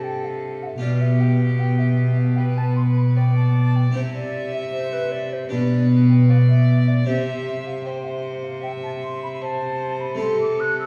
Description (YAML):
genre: classical, baroque-style sonata movement with continuo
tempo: 77 BPM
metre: 4/4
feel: straight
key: C major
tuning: A4 = 439 Hz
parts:
  - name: hollow wooden flute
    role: melody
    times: 0.0-10.9 s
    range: B4 to F#6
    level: -33 LUFS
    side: equal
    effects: none
  - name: warm violin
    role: second line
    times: 0.0-10.9 s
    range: G4 to E5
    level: -33 LUFS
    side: equal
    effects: none
  - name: harpsichord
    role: accompaniment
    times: 0.0-10.9 s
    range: B2 to A4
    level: -28 LUFS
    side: equal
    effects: none
  - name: rich cello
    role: bass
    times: 0.0-10.9 s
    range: B2 to C3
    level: -22 LUFS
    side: equal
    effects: none
room: wet recital hall reverb, RT60 1.4 s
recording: heard from further back in the room, vinyl crackle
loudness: -20 LUFS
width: mono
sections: 0.0-10.9 A section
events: none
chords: 0.0 D5/C; 0.8 G7/B; 4.0 C; 5.5 G/B; 7.1 C